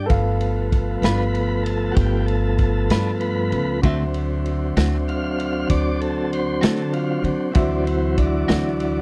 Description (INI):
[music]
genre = slow blues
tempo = 64 BPM (dotted quarters)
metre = 12/8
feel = straight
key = D mixolydian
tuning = A4 = 440 Hz
[part]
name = clear grand piano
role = accompaniment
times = 0.0-9.0 s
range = F#4 to F5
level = -34 LUFS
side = equal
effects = none
[part]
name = tonewheel organ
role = sustained chords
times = 0.0-9.0 s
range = D3 to F5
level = -25 LUFS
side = equal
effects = slow rotary speaker
[part]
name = upright bass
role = bass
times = 0.0-9.0 s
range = G1 to D3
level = -26 LUFS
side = equal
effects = none
[part]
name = crunchy breakbeat drum kit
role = drums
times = 0.1-8.9 s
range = kick drum, ride cymbal, snare drum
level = -23 LUFS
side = equal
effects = none
[part]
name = clean electric guitar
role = accompaniment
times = 1.0-8.7 s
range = D3 to B4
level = -26 LUFS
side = equal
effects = harmonic tremolo
[sound]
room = little or no reverb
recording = dry, close 1970s-style studio recording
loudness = -21 LUFS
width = mono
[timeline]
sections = 0.0-9.0 A section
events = tonewheel organ solo 0.0-9.0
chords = 0.0 G7; 3.8 D7